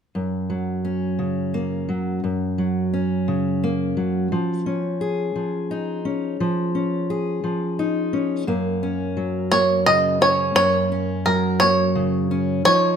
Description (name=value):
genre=folk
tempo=58 BPM (dotted quarters)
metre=6/8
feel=straight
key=F# major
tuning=A4 = 440 Hz
part: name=fingerpicked steel-string acoustic guitar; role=accompaniment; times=0.1-13.0 s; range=F#2 to G#4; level=-21 LUFS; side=equal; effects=none
part: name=bluegrass banjo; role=melody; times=9.5-13.0 s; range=A#4 to D#5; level=-17 LUFS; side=right 1 dB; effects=none
room=moderate large studio reverb, RT60 1.2 s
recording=none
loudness=-19 LUFS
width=side -7 dB against mid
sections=0.1-8.5 A section; 8.5-13.0 B section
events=none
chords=0.1 F#; 4.3 C#add9/E#; 8.5 F#